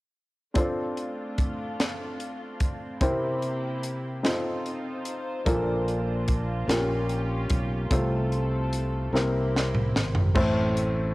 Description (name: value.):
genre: slow gospel.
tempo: 49 BPM (dotted quarters).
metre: 6/8.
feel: straight.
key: F major.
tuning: A4 = 439 Hz.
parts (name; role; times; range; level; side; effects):
warm upright piano; accompaniment; 0.5-11.1 s; A2 to C5; -28 LUFS; left 1 dB; cassette tape.
dark studio string section; sustained chords; 0.6-10.4 s; A3 to C5; -36 LUFS; equal; cassette tape.
crisp fusion drum kit; drums; 0.6-11.0 s; crash cymbal, hi-hat, kick drum, snare drum, toms; -27 LUFS; equal; cassette tape.
fingered electric bass; bass; 5.5-11.1 s; Ab1 to C2; -28 LUFS; equal; none.
room: light reverb, studio reverb.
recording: home recording on cassette.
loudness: -24 LUFS.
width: side -20 dB against mid.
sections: 0.6-10.4 A section.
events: drum fill 9.1-10.4.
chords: 0.6 F6; 3.0 C7; 4.2 F7; 5.5 Bbmaj7; 6.7 Bbm6; 7.9 F/C; 9.1 C7; 10.4 Am.